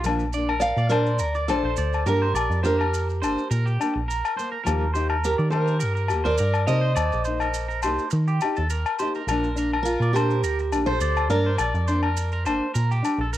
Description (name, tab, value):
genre	highlife guitar band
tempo	104 BPM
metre	4/4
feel	swing 53% on 16ths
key	Bb major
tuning	A4 = 439 Hz
part	nylon-string guitar	accompaniment	0.0-13.2 s	F3 to G4	-28 LUFS	left 1 dB	none
part	electric guitar at the edge of break-up	arpeggios	0.0-13.4 s	G4 to D5	-30 LUFS	right 4 dB	phaser, tape echo
part	metallic FM bass	bass	0.0-13.4 s	G1 to Eb3	-24 LUFS	equal	none
part	maracas	percussion	0.0-13.4 s	none	-40 LUFS	right 9 dB	none
part	agogo bells	percussion	0.1-13.2 s	none	-29 LUFS	left 8 dB	none
part	picked steel-string acoustic guitar	melody	0.6-12.4 s	F4 to F5	-25 LUFS	right 1 dB	none
room	light reverb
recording	home recording on cassette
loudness	-21 LUFS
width	side -13 dB against mid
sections	0.0-13.4 A section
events	none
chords	0.0 Bb; 4.7 Eb; 9.3 Bb